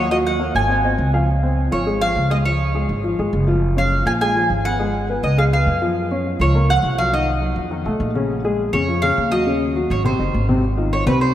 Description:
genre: Afro-Cuban jazz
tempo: 205 BPM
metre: 4/4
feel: straight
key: Db major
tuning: A4 = 435 Hz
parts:
  - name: mandolin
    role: melody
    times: 0.0-11.3 s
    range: Cb5 to Ab5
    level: -22 LUFS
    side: right 1 dB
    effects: none
  - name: dark baby grand piano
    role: accompaniment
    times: 0.0-11.3 s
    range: C3 to Gb5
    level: -21 LUFS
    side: left 2 dB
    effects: none
  - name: upright bass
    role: bass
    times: 0.0-11.3 s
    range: Gb1 to Gb2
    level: -20 LUFS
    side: equal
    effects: none
room: wet cathedral reverb, RT60 5.1 s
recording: in a vast, echoing space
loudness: -16 LUFS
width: side -12 dB against mid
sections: 0.0-1.3 A section; 1.3-10.6 B section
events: none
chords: 0.1 Ebm7; 0.7 Ab; 1.3 Dbmaj7; 2.5 Db; 3.6 Gbmaj7; 4.2 Bb5; 4.8 Abm7; 5.4 Db7; 6.0 Gbmaj7; 7.1 Cdim; 7.7 Faug7; 8.3 Bbm7; 9.5 Ebm7; 10.0 Ab7; 10.6 Ab6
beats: | 0.11 0.40 0.69 0.99 | 1.28 1.57 1.87 2.16 | 2.45 2.75 3.04 3.33 | 3.62 3.92 4.21 4.50 | 4.79 5.08 5.38 5.67 | 5.96 6.25 6.55 6.84 | 7.13 7.42 7.71 8.01 | 8.30 8.59 8.88 9.17 | 9.46 9.76 10.05 10.34 | 10.63 10.92 11.22

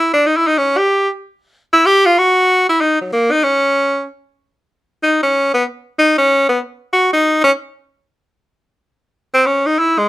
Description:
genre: jazz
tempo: free time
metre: none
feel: none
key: unclear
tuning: A4 = 439 Hz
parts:
  - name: edgy tenor saxophone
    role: solo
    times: 0.0-10.1 s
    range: F#3 to G4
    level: -11 LUFS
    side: equal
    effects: none
room: light reverb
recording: dark, warm production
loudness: -12 LUFS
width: side -16 dB against mid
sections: 0.0-4.7 A section; 4.7-10.1 A section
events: tenor saxophone solo 0.0-4.7, 4.7-10.1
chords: none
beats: free time

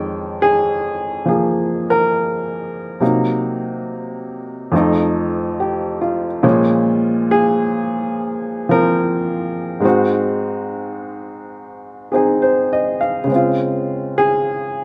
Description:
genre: solo jazz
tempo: 70 BPM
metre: 4/4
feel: swing 68% on 8ths, rubato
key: F minor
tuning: A4 = 435 Hz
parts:
  - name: warm upright piano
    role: solo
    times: 0.0-14.8 s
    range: F2 to G5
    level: -18 LUFS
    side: equal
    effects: none
room: light reverb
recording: lossy compression artefacts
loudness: -18 LUFS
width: mono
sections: 0.0-14.8 A section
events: upright piano solo 0.0-14.8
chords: 0.0 Fm9; 3.0 Cm7b5; 4.7 F7; 6.4 Bbm7; 9.8 Ab7; 13.3 Dbmaj7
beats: 0.40 1.28 2.15 | 3.01 3.87 4.73 5.59 | 6.44 7.29 8.14 8.99 | 9.84 10.69 11.55 12.42 | 13.30 14.18

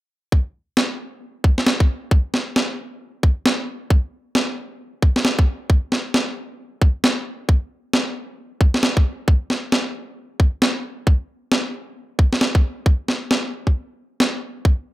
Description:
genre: UK garage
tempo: 134 BPM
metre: 4/4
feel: swing 62% on 16ths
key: none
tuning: none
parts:
  - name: electronic kick drum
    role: drums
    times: 0.3-14.8 s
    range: none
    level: -15 LUFS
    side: equal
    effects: overdrive
  - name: electronic snare drum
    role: drums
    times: 0.8-14.3 s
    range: none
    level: -19 LUFS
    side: equal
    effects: none
room: digital ambience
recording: none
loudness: -18 LUFS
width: side -17 dB against mid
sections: 0.3-14.9 A section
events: break 13.8-14.7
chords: none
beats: | 0.32 0.77 1.22 1.67 | 2.11 2.56 3.01 3.46 | 3.90 4.35 4.80 5.25 | 5.70 6.14 6.59 7.04 | 7.49 7.93 8.38 8.83 | 9.28 9.72 10.17 10.62 | 11.07 11.52 11.96 12.41 | 12.86 13.31 13.76 14.20 | 14.65

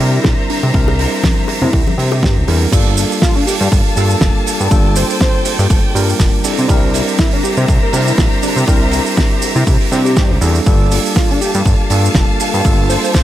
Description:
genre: nu-disco, nu disco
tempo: 121 BPM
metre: 4/4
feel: swing 56% on 16ths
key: G dorian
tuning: A4 = 438 Hz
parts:
  - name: wide unison lead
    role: melody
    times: 0.0-13.2 s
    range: D4 to C5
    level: -23 LUFS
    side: equal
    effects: dub echo
  - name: tine electric piano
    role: accompaniment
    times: 0.0-13.2 s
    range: G3 to C5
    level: -20 LUFS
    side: equal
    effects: medium stereo tremolo, sidechain pumping, tape echo
  - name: rich studio string section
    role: sustained chords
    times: 0.0-13.2 s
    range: Bb3 to Bb5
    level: -22 LUFS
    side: left 2 dB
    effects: sidechain pumping
  - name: fat analog bass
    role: bass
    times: 0.0-13.0 s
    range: F1 to C3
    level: -15 LUFS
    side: equal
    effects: sidechain pumping
  - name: damped 70s drum kit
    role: drums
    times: 0.0-13.2 s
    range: crash cymbal, hi-hat, shaker, snare drum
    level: -19 LUFS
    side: right 3 dB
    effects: none
  - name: electronic kick drum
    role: drums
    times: 0.2-13.2 s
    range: none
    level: -14 LUFS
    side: equal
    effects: none
  - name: bongos and congas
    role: percussion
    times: 0.2-2.6 s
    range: none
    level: -22 LUFS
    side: left 4 dB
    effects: none
room: small room ambience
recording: none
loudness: -11 LUFS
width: side -13 dB against mid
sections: 0.0-2.7 A section; 2.7-13.2 B section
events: drop 2.7-13.2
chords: 0.0 C7; 2.7 Gm9; 6.4 C7; 10.7 Gm9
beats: 0.25 | 0.74 1.24 1.74 2.23 | 2.73 3.22 3.72 4.22 | 4.71 5.21 5.70 6.20 | 6.70 7.19 7.69 8.18 | 8.68 9.18 9.67 10.17 | 10.66 11.16 11.65 12.15 | 12.65 13.14

